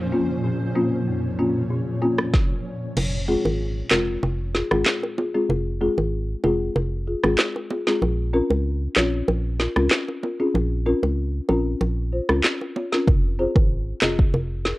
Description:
dancehall; 95 BPM; 4/4; straight; F minor; A4 = 442 Hz
folk marimba with soft mallets; accompaniment; 0.0-14.7 s; F2 to Eb5; -24 LUFS; left 2 dB; sidechain pumping
granular cloud pad; sustained chords; 0.0-2.3 s; Bb2 to Db5; -28 LUFS; equal; built-in reverb, sidechain pumping
afro-pop drum kit; drums; 2.2-14.8 s; crash cymbal, handclaps, kick drum, rim click, snare drum; -21 LUFS; equal; cassette tape
organ-like FM bass; bass; 3.0-14.7 s; F1 to Db2; -24 LUFS; equal
bongos; percussion; 3.0-14.5 s; -26 LUFS; right 2 dB
little or no reverb; home recording on cassette; -20 LUFS; side -19 dB against mid
0.0-3.0 A section; 3.0-14.8 B section
kick muted 3.0-13.1
0.0 Bbmadd9; 3.0 Fm; 8.0 Bbmadd9; 13.1 Fm

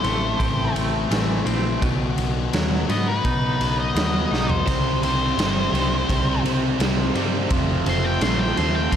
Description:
quiet-loud alternative rock; 84 BPM; 4/4; straight; A4 = 439 Hz
octave-fuzz lead guitar; melody; 0.0-9.0 s; B4 to C6; -27 LUFS; left 3 dB; distortion, slapback echo, analog delay
twangy electric guitar; arpeggios; 0.0-4.7 s; A2 to D#4; -29 LUFS; right 5 dB; tremolo, slapback echo, analog delay
fuzz guitar; riff; 0.0-9.0 s; A2 to G4; -27 LUFS; left 9 dB; distortion, slapback echo
picked electric bass; bass; 0.0-9.0 s; F1 to B2; -25 LUFS; right 1 dB
raw garage drum kit; drums; 0.0-9.0 s; kick drum, ride cymbal, snare drum, splash cymbal, toms; -24 LUFS; equal
raw garage guitar; riff; 4.7-9.0 s; F2 to C4; -26 LUFS; right 10 dB; overdrive, slapback echo
moderate lush hall reverb, RT60 2.6 s; big arena sound; -19 LUFS; side -9 dB against mid
0.0-9.0 A section
lead electric guitar solo 0.0-9.0; drum fill 4.3-4.7
0.0 Am; 1.8 B; 4.7 Cm; 7.5 F

